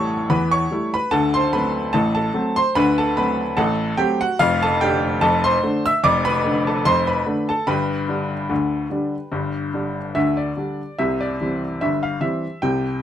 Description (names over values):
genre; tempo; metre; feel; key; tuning
ragtime piano; 73 BPM; 2/4; swing 54% on 16ths; C major from 4.4 s; A4 = 441 Hz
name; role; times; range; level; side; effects
bright upright piano; solo; 0.0-13.0 s; F1 to E6; -18 LUFS; equal; none
room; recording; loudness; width
moderate studio reverb, RT60 0.6 s; none; -18 LUFS; side -10 dB against mid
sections
0.0-11.0 A section; 11.0-13.0 B section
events
none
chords
0.0 A7; 1.1 D7; 4.4 Dm/F; 7.7 G; 11.0 C